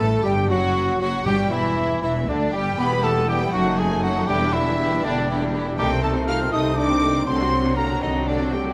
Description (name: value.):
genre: classical.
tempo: 80 BPM (dotted quarters).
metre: 6/8.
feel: straight.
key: unclear.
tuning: A4 = 441 Hz.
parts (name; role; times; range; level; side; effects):
clear symphonic violin section; melody; 0.0-8.6 s; D5 to F6; -36 LUFS; equal; none.
clear symphonic violin section; second line; 0.0-8.7 s; C4 to C5; -33 LUFS; equal; none.
mellow cor anglais; second line; 0.0-8.7 s; D4 to F5; -29 LUFS; equal; none.
silver concert flute; second line; 0.0-8.7 s; D5 to F6; -32 LUFS; equal; none.
warm clarinet; second line; 0.0-8.7 s; D4 to A4; -32 LUFS; equal; none.
rich symphonic viola section; accompaniment; 0.0-8.7 s; D3 to C4; -33 LUFS; equal; none.
warm bassoon; accompaniment; 0.0-8.7 s; D3 to B3; -32 LUFS; equal; none.
mellow French horn section; sustained chords; 0.0-8.7 s; D3 to F4; -30 LUFS; equal; none.
clear symphonic cello section; bass; 0.0-8.7 s; D2 to C3; -30 LUFS; equal; none.
rich symphonic double bass section; bass; 0.0-8.7 s; E1 to D2; -30 LUFS; equal; none.
timpani; percussion; 1.3-2.0 s; G2; -35 LUFS; equal; none.
room: moderate scoring stage reverb, RT60 1.7 s.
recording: none.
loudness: -21 LUFS.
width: mono.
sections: 0.0-8.7 A section.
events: none.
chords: 0.0 N.C.; 1.3 G5; 2.8 Em; 3.5 D#dim/F#; 4.3 Em7; 5.8 Adim/C; 7.3 D7/C.